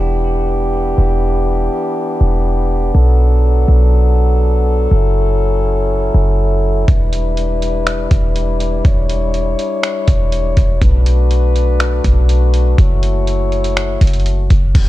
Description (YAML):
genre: hip hop, atmospheric cloud-rap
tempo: 122 BPM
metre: 4/4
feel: half-time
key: E dorian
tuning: A4 = 440 Hz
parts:
  - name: mellow French horn section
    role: sustained chords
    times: 0.0-14.9 s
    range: E3 to C#5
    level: -18 LUFS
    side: left 2 dB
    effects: sidechain pumping
  - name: warm 808-style bass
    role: bass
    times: 0.0-14.9 s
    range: E1 to B1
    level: -14 LUFS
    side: equal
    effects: none
  - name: trip hop sampler-style drum kit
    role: drums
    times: 6.9-14.9 s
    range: crash cymbal, finger snaps, hi-hat, kick drum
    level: -14 LUFS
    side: equal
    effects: none
room: little or no reverb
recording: dark, warm production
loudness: -12 LUFS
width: side -16 dB against mid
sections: 0.0-14.8 A section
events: none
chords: 0.0 Em7; 2.9 Bm7; 4.9 F#m7; 6.9 Em7; 10.8 Bm7; 12.8 F#m7